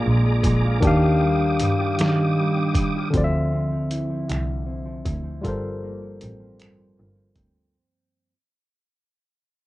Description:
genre	slow six-eight R&B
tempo	52 BPM (dotted quarters)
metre	6/8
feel	straight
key	D phrygian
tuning	A4 = 440 Hz
part	mellow electric guitar	second line	0.0-8.3 s	G2 to F4	-27 LUFS	right 3 dB	wide subtle chorus, cassette tape
part	barky tine electric piano	accompaniment	0.0-7.8 s	D3 to F5	-24 LUFS	left 2 dB	overdrive, cassette tape, plate reverb
part	tonewheel organ	sustained chords	0.0-3.1 s	G4 to Eb6	-29 LUFS	equal	chorus vibrato, fast rotary speaker, cassette tape, plate reverb
part	clear double bass	bass	0.1-7.7 s	G1 to G2	-24 LUFS	equal	none
part	dusty soul sampler-style drum kit	drums	0.4-7.5 s	finger snaps, hi-hat, kick drum, snare drum	-25 LUFS	equal	overdrive, cassette tape
room	light reverb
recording	home recording on cassette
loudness	-19 LUFS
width	side -17 dB against mid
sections	0.0-3.1 A section; 3.1-7.7 B section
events	fade-out 3.1-7.7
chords	0.0 Bb7; 0.8 Ebmaj9; 3.1 Dm9; 5.4 Gm11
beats	| 0.83 1.98 | 3.13 4.29 | 5.44 6.59

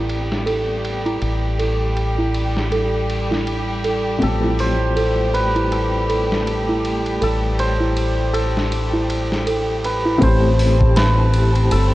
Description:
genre	trip hop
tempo	80 BPM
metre	4/4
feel	swing 58% on 16ths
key	A minor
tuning	A4 = 441 Hz
part	felt-muted upright piano	accompaniment	0.0-11.9 s	F3 to G4	-24 LUFS	left 1 dB	tremolo, vintage 12-bit sampler grit, low-pass filter, tape echo
part	clear studio violin section	sustained chords	0.0-11.9 s	G3 to A5	-26 LUFS	left 1 dB	none
part	small celesta	arpeggios	0.0-10.2 s	E4 to A4	-24 LUFS	right 2 dB	low-pass filter, digital delay
part	deep dub fingered electric bass	bass	0.0-11.9 s	G1 to A1	-20 LUFS	equal	none
part	dusty soul sampler-style drum kit	drums	0.1-11.9 s	hi-hat, kick drum, ride cymbal, snare drum	-26 LUFS	equal	low-pass filter on cymbals, low-pass filter on snare, low-pass filter on kick, low-pass filter on hats, low-pass filter on room
part	cimbalom	melody	4.2-11.9 s	A4 to C5	-23 LUFS	equal	tape echo
room	light reverb, small room reverb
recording	worn, warbling old tape, cassette tape, warbly pitch drift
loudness	-16 LUFS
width	side -16 dB against mid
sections	0.0-10.2 A section; 10.2-11.9 B section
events	filter sweep on felt piano 0.0-10.2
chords	0.0 Am9; 4.2 Fadd9/A; 10.2 Am9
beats	0.47 | 1.22 1.97 2.72 3.47 | 4.22 4.97 5.72 6.47 | 7.22 7.97 8.72 9.47 | 10.22 10.97 11.72

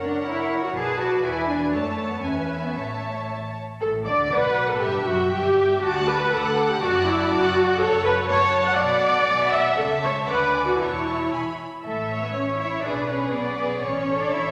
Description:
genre	quick classical-period movement for string orchestra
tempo	120 BPM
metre	2/4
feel	rubato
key	A major, D major from 3.8 s, A major from 7.8 s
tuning	A4 = 439 Hz
part	clear symphonic violin section	melody	0.0-14.5 s	G#4 to A5	-34 LUFS	equal	none
part	warm chamber violin section	second line	0.0-14.5 s	F#4 to F#6	-33 LUFS	equal	none
part	warm symphonic viola section	accompaniment	0.0-14.5 s	E4 to F#5	-24 LUFS	equal	none
part	rich symphonic double bass section	bass	0.0-14.5 s	E1 to F#2	-37 LUFS	equal	none
part	warm symphonic cello section	bass	0.0-14.4 s	D2 to G#4	-31 LUFS	equal	none
room	wet scoring stage reverb, RT60 1.7 s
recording	none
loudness	-23 LUFS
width	mono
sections	0.0-3.8 A section; 3.8-11.8 B section; 11.8-14.5 A section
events	none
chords	0.0 F#7; 0.7 Bm7; 1.2 E7; 1.7 F#m; 2.2 E; 2.8 A; 3.8 D/A; 4.8 Emadd9/F#; 5.8 D; 6.8 D/F#; 7.8 F#m; 8.8 Bm7; 9.3 E7/B; 9.8 A/C#; 10.3 Bm/D; 10.8 A/E; 11.8 A; 12.8 Bm69; 13.8 A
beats	0.26 | 0.75 1.24 | 1.73 2.23 | 2.76 3.29 | 3.81 4.32 | 4.82 5.32 | 5.82 6.31 | 6.81 7.30 | 7.79 8.28 | 8.78 9.28 | 9.78 10.28 | 10.80 11.32 | 11.84 12.35 | 12.85 13.34 | 13.84 14.33

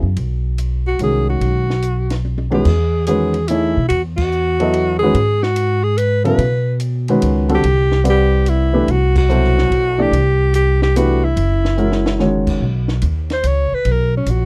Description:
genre	modal jazz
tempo	145 BPM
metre	3/4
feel	swing 67% on 8ths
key	E major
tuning	A4 = 440 Hz
part	clear alto saxophone	melody	0.0-14.5 s	C#4 to C#5	-20 LUFS	equal	none
part	warm baby grand piano	accompaniment	0.0-12.6 s	E2 to F#5	-20 LUFS	equal	none
part	upright bass	bass	0.0-14.5 s	F#1 to B2	-19 LUFS	equal	none
part	compact cocktail drum kit	drums	0.2-14.4 s	crash cymbal, hi-hat, kick drum, ride cymbal, snare drum, toms	-29 LUFS	equal	none
room	little or no reverb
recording	dry, close 1970s-style studio recording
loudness	-16 LUFS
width	mono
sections	0.0-2.7 A section; 2.7-12.6 B section; 12.6-14.5 C section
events	drum fill 2.2-2.7, 11.8-12.2; band accent 4.1, 9.1; alto saxophone solo 12.6-14.5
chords	0.0 Bmaj9; 2.7 Emaj9; 7.6 Cmaj9; 11.4 F#7; 12.6 Badd9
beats	| 0.17 0.59 1.00 | 1.42 1.83 2.25 | 2.66 3.08 3.49 | 3.91 4.32 4.73 | 5.15 5.56 5.98 | 6.39 6.80 7.22 | 7.63 8.05 8.46 | 8.88 9.29 9.70 | 10.12 10.53 10.95 | 11.36 11.78 12.19 | 12.61 13.02 13.44 | 13.85 14.27

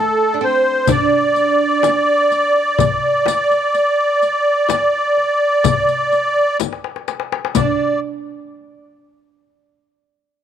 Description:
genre	Arabic maqam ensemble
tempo	126 BPM (eighths)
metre	10/8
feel	straight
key	unclear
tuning	A4 = 438 Hz
part	musette accordion	melody	0.0-8.0 s	A4 to D5	-14 LUFS	equal	none
part	oud	second line	0.0-8.0 s	A3 to D4	-23 LUFS	right 12 dB	none
part	darbuka	percussion	0.4-8.0 s	none	-23 LUFS	left 9 dB	none
part	frame drum	percussion	0.9-8.0 s	none	-22 LUFS	left 9 dB	none
part	riq	percussion	0.9-8.0 s	none	-23 LUFS	left 12 dB	none
room	light reverb, studio ambience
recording	1960s-style stereo with parts hard left and right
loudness	-14 LUFS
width	side -9 dB against mid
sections	0.0-7.6 A section; 7.6-10.4 B section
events	drum fill 6.6-7.6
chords	none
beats	0.40 0.88 1.35 1.83 2.31 | 2.79 3.26 3.74 4.22 4.69 5.17 5.65 6.12 6.60 7.08 | 7.55

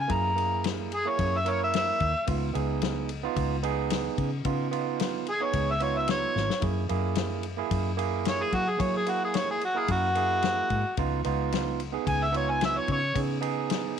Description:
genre	straight-eighth soul blues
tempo	110 BPM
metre	4/4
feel	straight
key	unclear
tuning	A4 = 441 Hz
part	overdriven harmonica	melody	0.0-13.2 s	Gb4 to Bb5	-28 LUFS	equal	none
part	vintage muted fingered electric bass	bass	0.0-14.0 s	Ab1 to Gb3	-31 LUFS	left 2 dB	none
part	overdriven tine electric piano	accompaniment	0.1-14.0 s	Bb3 to Bb4	-31 LUFS	right 13 dB	none
part	warm soul drum kit	drums	0.1-14.0 s	kick drum, ride cymbal, snare drum	-34 LUFS	left 8 dB	none
room	light reverb, studio ambience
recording	1960s-style stereo with parts hard left and right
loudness	-25 LUFS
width	side -8 dB against mid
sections	0.0-14.0 A section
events	harmonica solo 0.0-14.0; drum fill 6.4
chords	0.1 Gb9; 2.3 Db9; 6.6 Gb9; 11.0 Db9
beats	| 0.09 0.64 1.18 1.73 | 2.27 2.82 3.36 3.90 | 4.45 4.99 5.54 6.08 | 6.63 7.17 7.71 8.26 | 8.80 9.35 9.89 10.43 | 10.98 11.52 12.07 12.61 | 13.15 13.70

